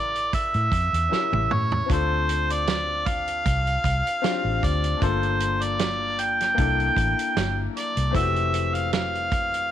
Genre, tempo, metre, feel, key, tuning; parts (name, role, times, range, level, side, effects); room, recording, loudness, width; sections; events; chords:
lush 1970s-style soul; 77 BPM; 4/4; swing 54% on 16ths; A4 = 439 Hz
mellow harmonica; melody; 0.0-9.7 s; C5 to G5; -24 LUFS; right 1 dB
clear grand piano; accompaniment; 0.0-9.7 s; C#3 to Bb4; -30 LUFS; left 13 dB
vintage muted fingered electric bass; bass; 0.0-9.7 s; F1 to A2; -26 LUFS; equal
warm soul drum kit; drums; 0.2-9.7 s; hi-hat, kick drum, snare drum, toms; -28 LUFS; right 3 dB
light reverb, small room ambience; 1960s-style stereo; -21 LUFS; side -11 dB against mid
0.0-9.7 A section
drum fill 1.1-1.9
0.0 A7b9; 1.9 Dm7; 5.0 Gm7; 6.6 C13; 8.1 Fmaj7